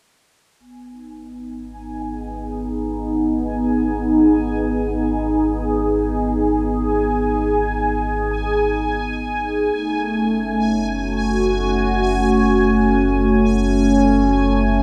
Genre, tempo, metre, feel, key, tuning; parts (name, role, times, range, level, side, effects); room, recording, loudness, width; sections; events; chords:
ambient, sequencer-driven space music; free time; G# phrygian; A4 = 440 Hz
phased analog pad; sustained chords; 0.6-14.8 s; A3 to G#4; -20 LUFS; equal; phaser, chorus
warm sub bass; bass; 0.6-14.8 s; F#1 to G#1; -28 LUFS; equal
bubbling stepped-filter texture; texture; 1.7-14.8 s; G#5; -29 LUFS; equal; chorus, built-in reverb
wet plate reverb, RT60 2.9 s; dark, warm production; -19 LUFS; mono
0.6-14.8 A section
fade-in on sub bass 0.6-14.8; filter sweep on analog synth pad 0.6-14.8
0.6 G#m; 9.7 F#m